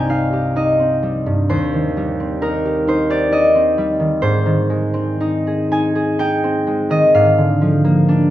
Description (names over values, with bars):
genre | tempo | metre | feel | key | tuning
classical, solo harp piece | 58-67 BPM | 3/4 | rubato | unclear | A4 = 440 Hz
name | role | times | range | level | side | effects
concert harp | solo | 0.0-8.3 s | C2 to Ab5 | -14 LUFS | equal | none
room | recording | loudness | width
moderate recital hall reverb, RT60 1.6 s | none | -14 LUFS | side -13 dB against mid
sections
0.0-8.3 A section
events
none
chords
0.0 Cm; 1.5 Cm/Eb; 4.2 Ab; 7.1 Bb7/Ab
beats
0.55 | 1.49 2.42 3.33 | 4.23 5.20 6.18 | 7.12 8.06